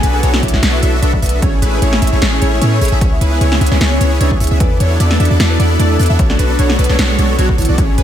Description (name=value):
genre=future bass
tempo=151 BPM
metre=4/4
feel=swing 53% on 16ths, half-time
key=unclear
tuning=A4 = 439 Hz
part: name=mellow electric guitar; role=melody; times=0.0-8.0 s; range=E3 to G#5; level=-22 LUFS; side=equal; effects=lush chorus, sidechain pumping, ping-pong delay
part: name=airy breathy pad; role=sustained chords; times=0.0-8.0 s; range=C#3 to B4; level=-27 LUFS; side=right 1 dB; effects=none
part: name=Celtic harp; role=arpeggios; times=0.0-8.0 s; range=F#4 to A5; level=-28 LUFS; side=left 6 dB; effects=sidechain pumping, diffuse ambient delay
part: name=wide unison pluck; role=arpeggios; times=0.0-8.0 s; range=B4 to E5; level=-28 LUFS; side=right 1 dB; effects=none
part: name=supersaw chords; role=riff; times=0.0-8.0 s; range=A3 to E5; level=-18 LUFS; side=equal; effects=lush chorus, sidechain pumping, diffuse ambient delay
part: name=warm 808-style bass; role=bass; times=0.0-8.0 s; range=A1 to A2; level=-13 LUFS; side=equal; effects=sidechain pumping
part: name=big-room dance drum kit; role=drums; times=0.0-8.0 s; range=hi-hat, snare drum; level=-19 LUFS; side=equal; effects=none
part: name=electronic kick drum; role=drums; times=0.4-7.9 s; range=none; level=-15 LUFS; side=equal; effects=none
room=light reverb, digital ambience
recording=none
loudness=-10 LUFS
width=side -10 dB against mid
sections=0.0-8.0 A section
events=none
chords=0.0 Bm9; 1.4 Amaj7; 3.0 C#m7; 4.6 E7sus4; 6.2 Bm9